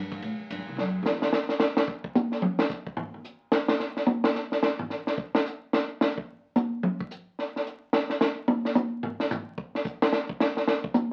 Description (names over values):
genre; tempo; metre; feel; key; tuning
jazz, small-group swing and bop; 218 BPM; 4/4; swing 61% on 8ths; unclear; A4 = 440 Hz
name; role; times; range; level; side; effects
upright bass; bass; 0.0-1.3 s; C2 to A2; -35 LUFS; equal; none
compact cocktail drum kit; drums; 0.1-11.0 s; hi-hat, kick drum, ride cymbal, snare drum, toms; -28 LUFS; equal; none
room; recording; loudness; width
wet studio ambience, RT60 0.5 s; very old 78 rpm record, vinyl crackle; -28 LUFS; mono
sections
0.0-1.3 A section; 1.3-10.1 B section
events
drum fill 0.8-1.3; drum solo 1.3-11.1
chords
none